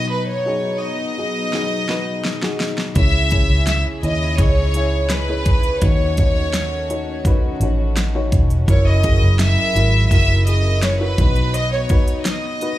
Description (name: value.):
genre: piano-driven pop.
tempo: 84 BPM.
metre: 4/4.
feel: straight.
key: unclear.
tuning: A4 = 440 Hz.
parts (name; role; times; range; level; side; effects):
clear studio violin section; melody; 0.0-12.8 s; B4 to E5; -22 LUFS; equal; none.
dark upright piano; accompaniment; 0.0-12.8 s; B2 to E5; -26 LUFS; left 2 dB; slapback echo.
warm studio string section; sustained chords; 0.0-12.8 s; C#3 to A#4; -30 LUFS; equal; none.
pop drum kit; drums; 1.5-12.8 s; hi-hat, kick drum, snare drum; -18 LUFS; equal; none.
vintage muted fingered electric bass; bass; 3.0-11.9 s; E1 to D#2; -18 LUFS; equal; none.
room: studio reverb.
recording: live gig heard through the venue's PA, club reverb.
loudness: -15 LUFS.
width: side -14 dB against mid.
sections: 0.0-12.8 A section.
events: drum fill 1.5-3.0.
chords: 0.0 B; 3.0 C#m; 5.8 D#m7b5; 8.7 F#7; 11.2 B.